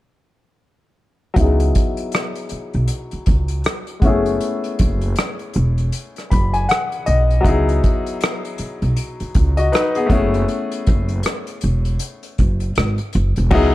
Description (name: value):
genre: R&B, neo-soul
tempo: 79 BPM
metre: 4/4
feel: swing 60% on 16ths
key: unclear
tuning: A4 = 440 Hz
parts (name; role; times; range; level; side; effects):
- bright grand piano; accompaniment; 1.3-13.7 s; Gb3 to Cb6; -21 LUFS; left 3 dB; low-pass filter
- upright bass; bass; 1.4-13.7 s; Fb1 to Db2; -18 LUFS; equal; none
- unplugged drum kit; drums; 1.4-13.7 s; crash cymbal, hi-hat, kick drum, rim click; -19 LUFS; equal; none
room: little or no reverb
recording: dark, warm production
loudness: -16 LUFS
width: side -16 dB against mid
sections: 1.4-13.5 A section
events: filter sweep on grand piano 1.4-13.5; grand piano fill 5.9-7.4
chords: 1.4 Dbm11; 4.0 Gbm11; 7.4 Dbm11; 10.1 Gbm11